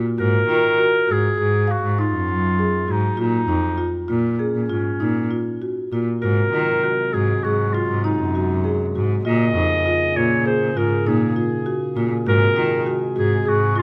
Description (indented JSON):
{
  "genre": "contemporary instrumental, chamber music in an uneven meter",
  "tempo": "100 BPM",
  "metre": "5/4",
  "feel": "straight",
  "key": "unclear",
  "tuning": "A4 = 442 Hz",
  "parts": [
    { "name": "marimba with medium mallets", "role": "arpeggios", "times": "0.0-13.8 s", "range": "Gb3 to F5", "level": "-26 LUFS", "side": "equal", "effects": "none" },
    { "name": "rich cello", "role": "bass", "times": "0.0-13.8 s", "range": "F2 to Eb3", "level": "-24 LUFS", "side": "equal", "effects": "none" },
    { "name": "bright clarinet", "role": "melody", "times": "0.2-13.8 s", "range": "Db4 to Eb5", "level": "-24 LUFS", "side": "equal", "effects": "none" },
    { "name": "warm brass ensemble", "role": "sustained chords", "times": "6.2-13.8 s", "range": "C3 to Ab4", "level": "-30 LUFS", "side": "equal", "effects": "none" }
  ],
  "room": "light reverb",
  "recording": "close, detailed microphones",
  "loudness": "-20 LUFS",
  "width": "mono",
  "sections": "0.0-13.8 A section",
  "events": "none",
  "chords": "0.2 Ab5; 3.2 Bbm; 6.2 Ab7; 9.3 Bbm7; 12.3 Ab7",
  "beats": "| 0.19 0.79 1.39 1.99 2.59 | 3.19 3.79 4.39 5.00 5.61 | 6.22 6.83 7.44 8.04 8.65 | 9.26 9.86 10.46 11.06 11.67 | 12.27 12.87 13.47"
}